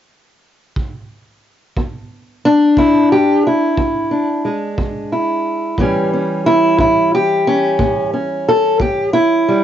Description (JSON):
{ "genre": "acoustic country blues, solo or duo", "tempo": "60 BPM (dotted quarters)", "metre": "12/8", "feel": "straight", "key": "unclear", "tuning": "A4 = 440 Hz", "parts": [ { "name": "kick drum", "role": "drums", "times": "0.8-9.0 s", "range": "none", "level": "-23 LUFS", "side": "right 1 dB", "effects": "cassette tape" }, { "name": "fingerpicked steel-string acoustic guitar", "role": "melody", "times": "1.8-9.6 s", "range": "E2 to A4", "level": "-12 LUFS", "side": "equal", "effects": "cassette tape" } ], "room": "moderate studio reverb, RT60 0.6 s", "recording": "home recording on cassette, nothing above 7.7 kHz", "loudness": "-13 LUFS", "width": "side -10 dB against mid", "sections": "0.0-1.8 A section; 1.8-9.6 B section", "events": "none", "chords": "0.0 N.C.; 1.8 E7; 5.8 A7", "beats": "0.76 | 1.76 2.77 3.77 4.78 | 5.78 6.79 7.79 8.80" }